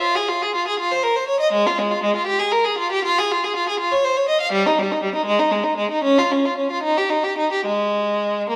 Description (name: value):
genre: classical, baroque-style suite movement for unaccompanied violin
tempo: 71-84 BPM (dotted quarters)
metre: 6/8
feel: rubato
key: F minor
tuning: A4 = 438 Hz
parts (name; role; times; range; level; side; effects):
- clear violin; solo; 0.0-8.6 s; G3 to F5; -20 LUFS; equal; none
room: wet recital hall reverb, RT60 1.8 s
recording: vinyl crackle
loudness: -20 LUFS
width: mono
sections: 0.0-8.6 A section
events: none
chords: none